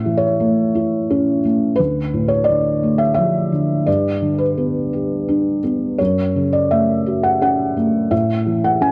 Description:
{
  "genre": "classical, lyrical solo piano",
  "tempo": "86 BPM",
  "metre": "3/4",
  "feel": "rubato",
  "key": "unclear",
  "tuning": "A4 = 445 Hz",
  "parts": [
    { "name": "felt-muted upright piano", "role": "solo", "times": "0.0-8.9 s", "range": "D2 to G#5", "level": "-18 LUFS", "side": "equal", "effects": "none" }
  ],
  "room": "moderate spring reverb, RT60 2.0 s",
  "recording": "worn, warbling old tape, cassette tape, warbly pitch drift",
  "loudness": "-18 LUFS",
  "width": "mono",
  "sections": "0.0-8.9 A section",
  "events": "none",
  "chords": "0.0 A; 1.8 Dmadd9; 3.9 G; 6.0 F#m; 8.1 A"
}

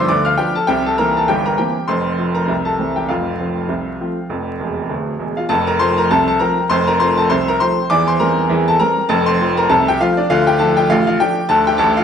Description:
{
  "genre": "ragtime piano",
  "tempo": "100 BPM",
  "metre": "2/4",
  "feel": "swing 57% on 16ths",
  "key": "F major",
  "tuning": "A4 = 440 Hz",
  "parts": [
    { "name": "bright upright piano", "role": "solo", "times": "0.0-12.0 s", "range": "D1 to F6", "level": "-14 LUFS", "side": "equal", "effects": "none" }
  ],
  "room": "wet stone room reverb, RT60 1.4 s",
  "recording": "band playing live in one room, vinyl crackle, nothing above 10.6 kHz",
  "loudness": "-14 LUFS",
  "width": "side -8 dB against mid",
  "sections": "0.0-5.5 A section; 5.5-12.0 B section",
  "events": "upright piano fill 4.6-5.5",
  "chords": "0.0 G7; 0.7 C7; 1.9 F; 2.5 C; 3.1 F; 7.9 C7/E; 9.1 F; 10.3 Dm"
}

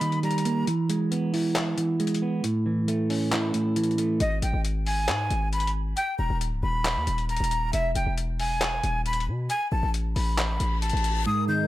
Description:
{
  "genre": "hip hop, trap",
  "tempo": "136 BPM",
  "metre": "4/4",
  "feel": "half-time",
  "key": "unclear",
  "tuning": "A4 = 441 Hz",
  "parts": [
    { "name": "breathy bright jazz flute", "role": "melody", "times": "0.0-0.7, 4.2-11.7 s", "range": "D#5 to G6", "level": "-28 LUFS", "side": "equal", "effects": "none" },
    { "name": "semi-hollow electric guitar", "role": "accompaniment", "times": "0.0-4.2, 11.3-11.7 s", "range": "G#2 to E5", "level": "-24 LUFS", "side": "right 2 dB", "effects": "none" },
    { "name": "boom bap sampler-style drum kit", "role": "drums", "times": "0.0-11.1 s", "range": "handclaps, hi-hat", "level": "-31 LUFS", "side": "left 1 dB", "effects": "none" },
    { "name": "distorted 808-style bass", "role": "bass", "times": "4.2-11.2 s", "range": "C#1 to B2", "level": "-27 LUFS", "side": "left 1 dB", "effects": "distortion" },
    { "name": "reverse cymbal", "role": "sound effects", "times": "10.5-11.3 s", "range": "none", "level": "-36 LUFS", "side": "left 8 dB", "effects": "none" },
    { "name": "glassy FM pad", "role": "sustained chords", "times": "11.3-11.7 s", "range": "G#3 to D#5", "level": "-32 LUFS", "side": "left 1 dB", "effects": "ensemble chorus, built-in reverb" }
  ],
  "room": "light reverb, digital ambience",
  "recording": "none",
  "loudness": "-24 LUFS",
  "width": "side -15 dB against mid",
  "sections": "0.0-11.3 A section",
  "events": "break 0.0-4.2; reverse cymbal 10.5-11.3",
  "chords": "0.0 D#; 0.7 E; 2.4 A; 4.2 N.C.; 6.0 D#5; 7.7 E; 9.5 Asus2"
}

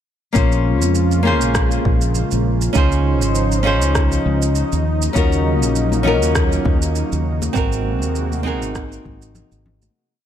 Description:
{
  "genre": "sunset chillout",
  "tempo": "100 BPM",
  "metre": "4/4",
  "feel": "swing 56% on 16ths",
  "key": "unclear",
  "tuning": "A4 = 440 Hz",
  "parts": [
    { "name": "flamenco guitar", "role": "accompaniment", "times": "0.3-9.9 s", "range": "Bb3 to C5", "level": "-21 LUFS", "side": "moving between left 7 dB and right 6 dB", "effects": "auto-pan, ping-pong delay" },
    { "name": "lush unison pad", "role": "sustained chords", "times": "0.4-9.9 s", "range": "C3 to C5", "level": "-23 LUFS", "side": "right 1 dB", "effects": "chorus" },
    { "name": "fretless electric bass", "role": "bass", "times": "0.4-9.9 s", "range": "Ab1 to F2", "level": "-19 LUFS", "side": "equal", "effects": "ensemble chorus" },
    { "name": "electronic kick drum", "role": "drums", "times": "0.4-9.2 s", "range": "none", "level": "-19 LUFS", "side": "equal", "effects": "none" },
    { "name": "electronic shaker and rim click", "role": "drums", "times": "0.4-9.9 s", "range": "none", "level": "-26 LUFS", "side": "right 3 dB", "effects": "none" },
    { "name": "congas", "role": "percussion", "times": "5.9-9.9 s", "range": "none", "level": "-29 LUFS", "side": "left 4 dB", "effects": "none" }
  ],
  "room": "light reverb",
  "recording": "dark, warm production",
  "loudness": "-15 LUFS",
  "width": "side -10 dB against mid",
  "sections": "0.4-10.0 groove",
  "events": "fade-out 6.8-10.0",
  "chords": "0.4 Bbm7; 2.8 Dbmaj9; 4.9 Ebm7; 7.6 Ab9"
}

